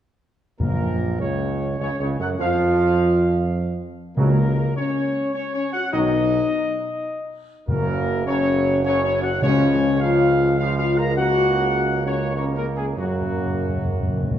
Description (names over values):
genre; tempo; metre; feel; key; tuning
classical; 102 BPM; 3/4; straight; F# major; A4 = 440 Hz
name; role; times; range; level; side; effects
clear trumpet section; melody; 0.6-14.4 s; F#4 to A#5; -26 LUFS; right 1 dB; none
clear trombone section; sustained chords; 0.6-14.4 s; A#2 to A#3; -29 LUFS; right 4 dB; none
mellow French horn section; sustained chords; 0.6-14.4 s; F#3 to A#4; -23 LUFS; left 3 dB; none
clear tuba; bass; 0.6-14.4 s; F#1 to F#2; -24 LUFS; right 3 dB; none
timpani; percussion; 0.6-1.5, 4.2-10.3, 13.0-14.4 s; F#2 to C#3; -24 LUFS; left 1 dB; none
room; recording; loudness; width
wet recital hall reverb, RT60 1.7 s; dark, warm production; -19 LUFS; side -10 dB against mid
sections
0.6-14.4 A section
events
timpani fill 13.0-14.4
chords
0.6 F#/A#; 2.4 N.C.; 4.2 F#/C#; 5.9 B; 7.7 F#; 9.4 C#; 11.2 F#/C#; 13.0 F#